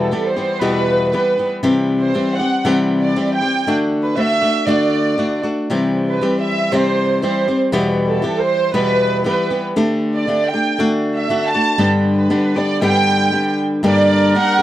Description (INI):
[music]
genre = mexican folk, mariachi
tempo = 118 BPM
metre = 2/4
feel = rubato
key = G major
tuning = A4 = 445 Hz
[part]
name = dark studio violin section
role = melody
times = 0.0-14.6 s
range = A4 to A5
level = -18 LUFS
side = right 3 dB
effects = none
[part]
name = flamenco guitar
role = accompaniment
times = 0.0-14.6 s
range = E2 to G4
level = -16 LUFS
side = left 1 dB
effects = none
[part]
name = clear trumpet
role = second line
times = 13.9-14.6 s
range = Bb4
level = -20 LUFS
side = right 2 dB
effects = none
[sound]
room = studio ambience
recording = dry, close 1970s-style studio recording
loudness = -14 LUFS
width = side -13 dB against mid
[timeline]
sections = 0.0-13.8 A section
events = none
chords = 0.0 Em; 1.7 C; 3.7 D; 5.7 C; 7.7 Em; 9.8 Dsus4; 10.8 D; 11.8 G; 13.8 Gm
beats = 0.12 | 0.63 1.14 | 1.66 2.17 | 2.67 3.17 | 3.68 4.18 | 4.68 5.19 | 5.70 6.21 | 6.72 7.22 | 7.72 8.23 | 8.73 9.24 | 9.76 10.28 | 10.79 11.30 | 11.80 12.30 | 12.81 13.32 | 13.84 14.36